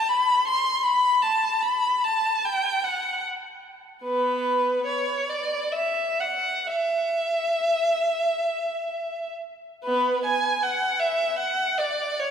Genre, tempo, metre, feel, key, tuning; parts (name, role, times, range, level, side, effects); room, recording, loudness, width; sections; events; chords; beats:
classical, free, expressive piece for unaccompanied violin; 29-54 BPM (dotted quarters); 6/8; rubato; E dorian; A4 = 443 Hz
rich violin; solo; 0.0-12.3 s; B3 to C6; -22 LUFS; equal
wet church reverb, RT60 3.3 s; minimal, uncompressed stereo recording; -22 LUFS; side -8 dB against mid
0.0-9.8 A section; 9.8-12.3 B section
0.49 | 1.64 2.84 | 4.04 5.28 | 6.66 8.13 | 9.83 11.01 | 12.19